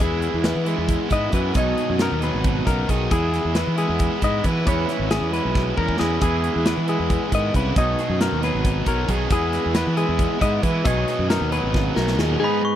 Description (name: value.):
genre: math rock and midwest emo.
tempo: 271 BPM (eighths).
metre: 7/8.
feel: straight.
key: unclear.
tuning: A4 = 440 Hz.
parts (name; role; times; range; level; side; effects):
twangy electric guitar; accompaniment; 0.0-12.8 s; G#2 to C#5; -28 LUFS; right 7 dB; spring reverb.
clean electric guitar; arpeggios; 0.0-12.8 s; G#4 to D#5; -26 LUFS; left 6 dB; vibrato effect.
biting overdriven guitar; riff; 0.0-12.7 s; B2 to G#4; -27 LUFS; right 2 dB; none.
fuzz fingered electric bass; bass; 0.0-12.4 s; G#1 to E3; -24 LUFS; equal; overdrive.
modern studio drum kit; drums; 0.2-12.3 s; hi-hat, kick drum, snare drum; -24 LUFS; equal; none.
glockenspiel with hard plastic mallets; melody; 12.4-12.8 s; B5 to C#6; -24 LUFS; left 4 dB; none.
room: little or no reverb.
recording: dry, close 1970s-style studio recording.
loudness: -19 LUFS.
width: side -11 dB against mid.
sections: 0.0-12.4 A section.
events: drum fill 5.6-6.2, 11.7-12.4.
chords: 0.0 Emaj7; 1.6 B69; 3.1 Emaj7; 4.7 C#m7; 6.2 Emaj7; 7.8 B69; 9.3 Emaj7; 10.9 B69.